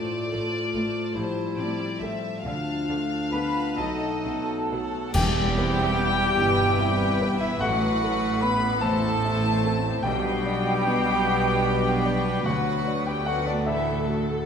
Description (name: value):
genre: cinematic, emotional film score for orchestra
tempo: 43-50 BPM (dotted quarters)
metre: 6/8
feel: rubato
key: E minor from 5.1 s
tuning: A4 = 440 Hz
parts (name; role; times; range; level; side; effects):
- warm studio violin section; melody; 0.0-14.5 s; G4 to F5; -33 LUFS; left 4 dB; none
- mellow clarinet; second line; 0.0-5.1 s; D4 to F4; -30 LUFS; left 1 dB; none
- warm studio violin section; second line; 0.0-14.1 s; C5 to B5; -34 LUFS; left 4 dB; none
- dark baby grand piano; accompaniment; 0.0-14.5 s; A1 to B5; -30 LUFS; left 2 dB; none
- dark symphonic viola section; accompaniment; 0.0-14.5 s; F3 to A4; -34 LUFS; right 2 dB; none
- dark symphonic double bass section; bass; 0.3-14.5 s; E1 to D2; -31 LUFS; right 4 dB; none
- rich symphonic cello section; bass; 0.3-14.5 s; D2 to D3; -31 LUFS; right 2 dB; none
- cymbal swell, clash cymbals and concert bass drum; percussion; 2.4-6.7 s; none; -31 LUFS; equal; none
- mellow cor anglais; second line; 3.3-14.1 s; D4 to B4; -30 LUFS; right 2 dB; none
- mellow flute section; second line; 3.3-14.1 s; D5 to B5; -32 LUFS; equal; none
- mellow French horn section; sustained chords; 3.3-14.1 s; D3 to B3; -31 LUFS; left 3 dB; none
- timpani; percussion; 5.1-11.2 s; E2 to B2; -32 LUFS; equal; none
room: wet scoring stage reverb, RT60 1.6 s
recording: none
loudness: -22 LUFS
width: side -7 dB against mid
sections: 0.0-5.1 A section; 5.1-14.5 B section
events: band accent 5.1-6.0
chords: 0.0 F/A; 2.4 Dm; 3.8 B7; 5.1 Em; 7.6 Asus2; 10.0 G/B; 12.5 D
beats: 1.16 | 2.45 3.78 | 5.14 6.38 | 7.61 8.82 | 10.04 11.27 | 12.47 13.67